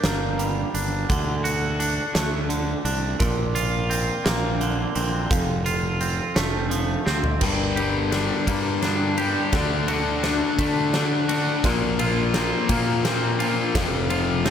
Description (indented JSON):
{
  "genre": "post-rock",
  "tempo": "57 BPM (dotted quarters)",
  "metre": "6/8",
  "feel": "straight",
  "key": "G minor",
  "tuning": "A4 = 441 Hz",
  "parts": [
    { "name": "pedal steel guitar", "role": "sustained chords", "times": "0.0-14.5 s", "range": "A4 to D6", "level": "-35 LUFS", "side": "right 2 dB", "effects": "none" },
    { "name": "twangy electric guitar", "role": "arpeggios", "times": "0.0-14.5 s", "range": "F2 to G4", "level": "-27 LUFS", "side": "right 1 dB", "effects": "spring reverb, slapback echo" },
    { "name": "fuzz fingered electric bass", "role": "bass", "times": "0.0-14.5 s", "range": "F1 to D3", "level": "-27 LUFS", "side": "equal", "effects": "overdrive" },
    { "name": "huge arena drum kit", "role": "drums", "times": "0.0-14.5 s", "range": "crash cymbal, hi-hat, kick drum, ride cymbal, snare drum, toms", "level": "-26 LUFS", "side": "right 1 dB", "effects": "none" },
    { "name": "distorted electric guitar", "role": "riff", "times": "7.4-14.5 s", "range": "F2 to D4", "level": "-24 LUFS", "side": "left 6 dB", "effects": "distortion" }
  ],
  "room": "moderate lush hall reverb, RT60 2.8 s",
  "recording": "big arena sound",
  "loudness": "-20 LUFS",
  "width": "side -8 dB against mid",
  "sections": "0.0-7.4 A section; 7.4-14.5 B section",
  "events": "drum fill 7.1-7.4, 7.4-14.5; build-up 7.4-14.5",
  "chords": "0.0 Gm; 1.1 D; 3.2 Bbadd9; 5.3 F; 7.4 Gm; 9.5 D; 11.6 Bbadd9; 13.8 F"
}